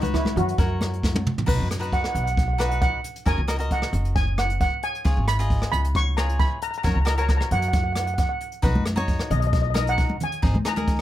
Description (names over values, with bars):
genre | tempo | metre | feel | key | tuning
calypso | 134 BPM | 4/4 | straight | B major | A4 = 436 Hz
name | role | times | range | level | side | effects
steel pan | melody | 0.0-11.0 s | D#4 to C#6 | -27 LUFS | equal | none
cavaquinho | accompaniment | 0.0-11.0 s | D#4 to D#5 | -30 LUFS | left 1 dB | none
upright bass | bass | 0.0-11.0 s | F#1 to F#2 | -24 LUFS | equal | none
jazz brush drum kit | drums | 0.0-11.0 s | crash cymbal, hi-hat, kick drum, rim click, snare drum, toms | -25 LUFS | equal | none
congas | percussion | 0.0-1.2, 8.8-10.9 s | none | -28 LUFS | equal | none
room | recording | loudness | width
little or no reverb | none | -20 LUFS | side -13 dB against mid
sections
0.0-1.5 A section; 1.5-11.0 A section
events
drum fill 1.0-1.5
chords
0.0 F#sus4; 0.6 F#; 1.5 B; 3.3 F#add9; 5.1 C#7; 6.8 F#; 8.6 Badd9; 10.4 G#